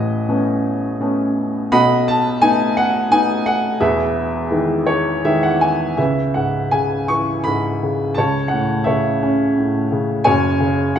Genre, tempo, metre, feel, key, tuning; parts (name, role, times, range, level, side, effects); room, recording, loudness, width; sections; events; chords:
classical, lyrical solo piano; 85 BPM; 3/4; rubato; E major, C# minor from 6.0 s; A4 = 439 Hz
warm upright piano; solo; 0.0-11.0 s; E1 to C#6; -15 LUFS; equal
wet recital hall reverb, RT60 1.5 s; recorded in a church or concert hall; -15 LUFS; side -9 dB against mid
0.0-6.0 A section; 6.0-11.0 B section
upright piano fill 4.5-6.0
0.0 Aadd9; 1.7 B7; 3.8 Emaj7; 6.0 C#m7; 8.2 A/C#; 10.3 F#5